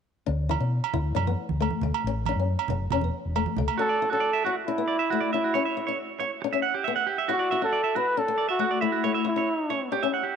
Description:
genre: highlife guitar band.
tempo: 137 BPM.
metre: 4/4.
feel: straight.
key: D major.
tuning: A4 = 440 Hz.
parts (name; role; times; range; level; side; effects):
picked old ladder-braced acoustic guitar; accompaniment; 0.3-10.2 s; A3 to E4; -31 LUFS; left 13 dB; none.
fingered electric bass; bass; 0.3-3.7 s; E1 to B2; -27 LUFS; left 1 dB; none.
agogo bells; percussion; 0.5-3.8 s; none; -31 LUFS; right 14 dB; none.
congas; percussion; 0.5-3.7 s; none; -34 LUFS; right 8 dB; none.
dark trumpet; melody; 3.8-9.9 s; E4 to B4; -26 LUFS; equal; none.
clean electric guitar; arpeggios; 3.8-10.3 s; F#4 to F#5; -28 LUFS; right 9 dB; spring reverb, slapback echo.
room: moderate plate reverb, RT60 3.4 s.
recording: 1960s-style stereo with parts hard left and right.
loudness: -24 LUFS.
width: side -7 dB against mid.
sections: 0.3-3.8 A section; 3.8-10.4 B section.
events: none.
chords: 0.3 Dsus2; 2.0 A; 2.9 E5; 3.8 Dadd9; 5.5 C#m; 6.4 Emadd9; 7.3 Dadd9; 9.1 A.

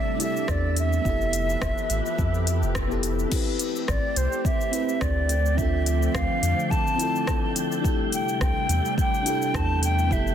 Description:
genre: sunset chillout.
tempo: 106 BPM.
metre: 4/4.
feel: swing 54% on 16ths.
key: unclear.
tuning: A4 = 438 Hz.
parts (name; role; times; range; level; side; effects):
hollow concert flute; melody; 0.0-10.3 s; C5 to A5; -28 LUFS; left 1 dB; tape echo.
mellow FM electric piano; accompaniment; 0.0-10.3 s; B3 to B4; -30 LUFS; moving between left 6 dB and right 8 dB; chorus, auto-pan.
soft string machine; sustained chords; 0.0-10.3 s; C3 to E5; -31 LUFS; equal; ensemble chorus.
deep house drum kit; drums; 0.2-10.3 s; cabasa, crash cymbal, hi-hat, rim click; -32 LUFS; left 2 dB; small room ambience.
round analog bass; bass; 0.5-10.3 s; F1 to F2; -25 LUFS; equal; none.
electronic kick drum; drums; 0.5-10.2 s; none; -27 LUFS; equal; small room ambience.
wind-like tuned noise texture; texture; 4.2-10.3 s; G5; -37 LUFS; right 3 dB; built-in reverb.
room: light reverb.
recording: dense, heavily limited modern master.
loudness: -22 LUFS.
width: side -9 dB against mid.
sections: 0.0-3.3 A section; 3.3-10.3 B section.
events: band accent 2.8.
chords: 0.0 C69; 1.1 Fmaj9#11; 3.3 Am9; 5.3 Dm9; 7.8 C69.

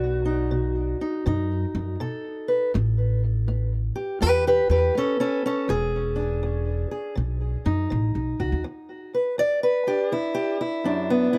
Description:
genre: acoustic country blues, solo or duo.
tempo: 81 BPM.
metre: 4/4.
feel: swing 65% on 8ths.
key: unclear.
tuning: A4 = 440 Hz.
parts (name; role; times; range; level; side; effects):
fingerpicked acoustic archtop guitar; melody; 0.0-11.4 s; E2 to D5; -26 LUFS; equal; tape echo.
upright bass; bass; 0.0-8.6 s; E1 to F#2; -27 LUFS; equal; none.
room: light reverb.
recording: none.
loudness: -25 LUFS.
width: mono.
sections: 0.0-8.6 A section; 8.6-11.4 A section.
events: none.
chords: 0.0 B7; 2.7 A7; 5.7 E7; 7.2 B7; 8.6 E7(no3).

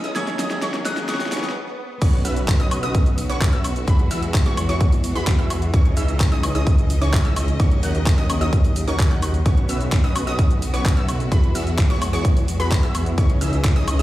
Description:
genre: EDM, festival progressive house.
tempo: 129 BPM.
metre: 4/4.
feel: straight.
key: B major.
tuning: A4 = 444 Hz.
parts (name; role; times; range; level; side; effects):
soft synth bell; melody; 0.0-1.5 s; D#6 to G#6; -31 LUFS; left 2 dB; chorus, phaser, digital delay.
picked steel-string acoustic guitar; accompaniment; 0.0-1.5 s; D#3 to G#4; -33 LUFS; right 2 dB; sidechain pumping, digital delay.
clear studio string section; sustained chords; 0.0-14.0 s; C#3 to D#5; -33 LUFS; left 2 dB; sidechain pumping.
wide unison pluck; arpeggios; 0.0-14.0 s; B5 to F#6; -31 LUFS; equal; lush chorus, sidechain pumping, digital delay.
supersaw stab; riff; 0.0-14.0 s; B3 to F#5; -28 LUFS; equal; sidechain pumping, digital delay.
wide detuned saw bass; bass; 0.0-14.0 s; B1 to E2; -24 LUFS; equal; chorus, sidechain pumping, high-pass filter.
pop drum kit; drums; 0.0-14.0 s; crash cymbal, handclaps, hi-hat, shaker, snare drum, woodblock; -28 LUFS; equal; overdrive.
riser and swell; sound effects; 0.0-2.0 s; none; -34 LUFS; equal; none.
electronic kick drum; drums; 2.0-13.7 s; none; -17 LUFS; equal; none.
room: digital ambience.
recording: played on a big sound system in a bare room, large studio reverb, high-pass filter.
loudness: -17 LUFS.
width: side -16 dB against mid.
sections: 0.0-2.0 A section; 2.0-14.0 B section.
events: build-up 0.0-2.0; drum fill 0.0-1.6; riser 0.0-1.6; swell 1.1-2.0; stop 1.6-2.0; drop 2.0-14.0.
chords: 0.2 D#m7; 2.0 Bsus2; 3.9 Eadd9; 5.7 C#madd9; 7.6 D#m7; 9.5 Bsus2; 11.3 Eadd9; 13.2 C#madd9.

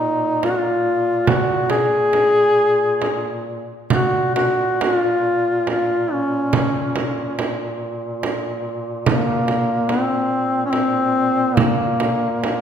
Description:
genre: caucasian folk, Caucasian lament.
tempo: 70 BPM.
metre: 3/4.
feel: uneven beats, rubato.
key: Bb minor.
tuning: A4 = 440 Hz.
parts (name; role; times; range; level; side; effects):
warm duduk; melody; 0.0-12.6 s; Bb3 to Ab4; -18 LUFS; left 1 dB; none.
warm duduk; drone; 0.0-12.6 s; Bb2; -27 LUFS; equal; none.
frame drum; percussion; 0.4-12.6 s; none; -22 LUFS; right 4 dB; none.
room: wet scoring stage reverb, RT60 1.8 s.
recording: recorded in a church or concert hall.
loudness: -17 LUFS.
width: side -8 dB against mid.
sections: 0.0-12.6 A section.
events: none.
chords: none.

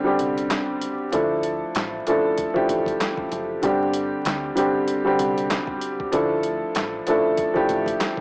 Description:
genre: hip hop, boom-bap hip-hop.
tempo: 96 BPM.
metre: 4/4.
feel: swing 55% on 16ths.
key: D minor.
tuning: A4 = 440 Hz.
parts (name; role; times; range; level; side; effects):
warm upright piano; accompaniment; 0.0-8.2 s; D3 to A4; -24 LUFS; equal; cassette tape.
deep dub fingered electric bass; bass; 0.2-7.9 s; F#1 to D2; -38 LUFS; equal; tube saturation.
boom bap sampler-style drum kit; drums; 0.2-8.2 s; handclaps, hi-hat, kick drum, snare drum; -31 LUFS; equal; none.
room: light reverb, digital ambience.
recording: home recording on cassette, vinyl crackle, small speaker sound.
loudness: -23 LUFS.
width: mono.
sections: 0.0-8.2 A section.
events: break 0.0-1.1.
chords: 0.0 Gsus4; 1.1 Dmadd9; 3.6 Gsus4; 6.1 Dmadd9.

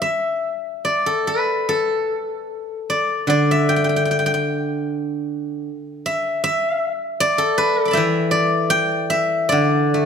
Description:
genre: chinese traditional, Chinese solo plucked strings.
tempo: 72-81 BPM.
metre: 4/4.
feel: rubato.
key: D zhi mode.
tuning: A4 = 440 Hz.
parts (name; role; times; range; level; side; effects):
steel-string zither; solo; 0.0-10.1 s; D3 to D6; -18 LUFS; left 1 dB; none.
room: moderate scoring stage reverb, RT60 1.4 s.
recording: none.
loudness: -18 LUFS.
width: side -6 dB against mid.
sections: 0.0-10.1 A section.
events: none.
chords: none.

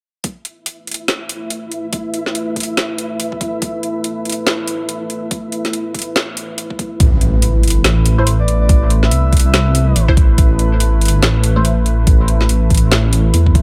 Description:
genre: deep dubstep.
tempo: 142 BPM.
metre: 4/4.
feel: swing 59% on 16ths, half-time.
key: unclear.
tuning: A4 = 442 Hz.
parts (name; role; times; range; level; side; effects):
deep dark ambient pad; sustained chords; 1.2-13.6 s; A3 to B4; -27 LUFS; equal; chorus, built-in reverb.
electronic kick drum; drums; 0.2-13.6 s; none; -15 LUFS; equal; overdrive, high-pass filter on kick, studio reverb.
garage drum kit; drums; 0.2-13.6 s; hi-hat, snare drum; -21 LUFS; equal; overdrive, studio reverb.
flickering grainy texture; texture; 0.9-7.0 s; E4 to E5; -29 LUFS; equal; built-in reverb.
dark detuned saw bass; bass; 7.0-13.6 s; A1 to E2; -15 LUFS; equal; none.
impact; sound effects; 7.0-8.7 s; none; -24 LUFS; equal; none.
filtered dub chord stab; stabs; 8.2-11.7 s; A3 to C5; -26 LUFS; equal; phaser, analog chorus, dub echo.
breathy flute-like synth lead; melody; 8.4-10.0 s; D5 to E5; -27 LUFS; equal; chorus, dub echo.
room: light reverb.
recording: none.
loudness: -15 LUFS.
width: mono.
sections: 0.2-7.0 A section; 7.0-13.6 B section.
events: drop 7.0-13.6; impact 7.0-8.7.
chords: 0.2 A5; 7.0 Am.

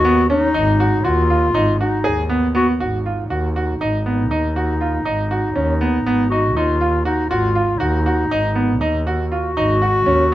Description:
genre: contemporary instrumental, chamber music in an uneven meter.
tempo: 239 BPM (eighths).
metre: 9/8.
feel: straight.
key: G# dorian.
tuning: A4 = 440 Hz.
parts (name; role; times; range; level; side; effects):
warm clarinet; second line; 0.0-10.3 s; D#4 to F#4; -20 LUFS; left 2 dB; none.
bright grand piano; arpeggios; 0.0-10.3 s; B3 to G#4; -20 LUFS; right 2 dB; none.
clear double bass; bass; 0.0-10.3 s; G#1 to D#2; -21 LUFS; equal; none.
room: light reverb.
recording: close, detailed microphones.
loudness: -16 LUFS.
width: side -14 dB against mid.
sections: 0.0-2.8 A section; 2.8-10.3 B section.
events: none.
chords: 0.0 G#m7; 2.8 G#7(no3).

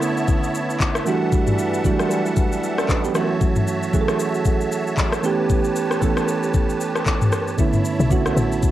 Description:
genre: amapiano.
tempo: 115 BPM.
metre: 4/4.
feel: swing 58% on 16ths.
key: B minor.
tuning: A4 = 440 Hz.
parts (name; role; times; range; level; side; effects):
soft electric-piano-like synth keys; accompaniment; 0.0-8.7 s; D3 to B4; -21 LUFS; right 4 dB; chorus, cassette tape.
musette accordion; sustained chords; 0.0-8.7 s; E3 to A5; -26 LUFS; equal; sidechain pumping, cassette tape.
afro-pop drum kit; drums; 0.0-8.7 s; handclaps, kick drum, rim click, shaker, toms; -21 LUFS; left 2 dB; cassette tape.
tight log drum bass; bass; 8.0-8.7 s; A1 to B1; -21 LUFS; left 2 dB; none.
room: light reverb.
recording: home recording on cassette.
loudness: -18 LUFS.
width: side -13 dB against mid.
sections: 0.0-8.7 A section.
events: none.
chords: 0.0 Bm11; 1.1 Em11; 3.1 F#m7; 5.2 A9; 7.6 Bm11.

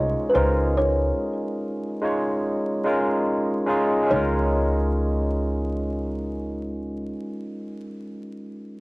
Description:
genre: lo-fi hip hop.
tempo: 72 BPM.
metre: 4/4.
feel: swing 62% on 16ths.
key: Db major.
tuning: A4 = 440 Hz.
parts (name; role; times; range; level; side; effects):
kalimba; melody; 0.0-7.1 s; Cb5 to Eb5; -24 LUFS; equal; low-pass filter, cassette tape.
barky tine electric piano; accompaniment; 0.0-8.8 s; Ab3 to Eb5; -24 LUFS; equal; medium stereo tremolo, low-pass filter, cassette tape.
upright bass; bass; 0.0-7.1 s; C2 to Db2; -26 LUFS; equal; tube saturation.
room: moderate booth ambience, RT60 0.2 s.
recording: home recording on cassette, vinyl crackle.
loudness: -21 LUFS.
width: side -24 dB against mid.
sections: 0.0-4.1 A section; 4.1-7.4 B section.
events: none.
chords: 0.3 Db69.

